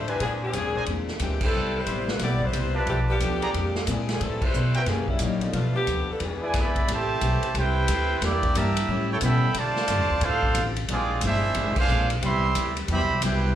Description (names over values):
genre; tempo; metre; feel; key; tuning
jazz, big band swing; 180 BPM; 4/4; swing 64% on 8ths; A minor; A4 = 440 Hz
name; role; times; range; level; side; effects
clear saxophone section; melody; 0.0-6.7 s; E3 to D5; -28 LUFS; left 2 dB; slapback echo
picked steel-string acoustic guitar; accompaniment; 0.0-13.5 s; A2 to B4; -33 LUFS; left 5 dB; slapback echo
warm concert grand piano; accompaniment; 0.0-5.9 s; F3 to F4; -36 LUFS; right 1 dB; slapback echo
upright bass; bass; 0.0-13.5 s; G1 to D3; -27 LUFS; equal; none
warm trumpet section; stabs; 0.1-6.9 s; D4 to Bb5; -31 LUFS; right 2 dB; slapback echo
swinging big-band drum kit; drums; 0.1-13.3 s; crash cymbal, hi-hat, kick drum, ride cymbal, snare drum; -30 LUFS; equal; none
clear trombone section; second line; 6.2-13.5 s; B2 to G4; -34 LUFS; right 5 dB; none
clear trumpet section; melody; 6.5-13.5 s; Bb3 to C6; -25 LUFS; right 2 dB; slapback echo
room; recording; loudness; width
light reverb; live gig heard through the venue's PA, club reverb; -22 LUFS; side -11 dB against mid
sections
0.0-6.9 A section; 6.9-13.6 B section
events
band accent 1.4, 4.4, 11.7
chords
0.2 Bb9; 1.5 Cmaj7; 2.9 Bm7b5; 3.5 Bb9; 4.2 Am9; 4.9 F#7b9; 5.5 Bm7b5; 6.2 E7; 6.9 Am9; 8.2 Em7b5; 8.9 A7; 9.5 Dm7; 10.9 Bb9; 12.2 Cmaj7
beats
| 0.21 0.54 0.88 1.21 | 1.54 1.88 2.21 2.54 | 2.88 3.21 3.54 3.88 | 4.21 4.54 4.88 5.21 | 5.55 5.88 6.21 6.55 | 6.88 7.21 7.55 7.88 | 8.22 8.55 8.88 9.22 | 9.55 9.88 10.22 10.55 | 10.88 11.22 11.55 11.88 | 12.22 12.55 12.88 13.22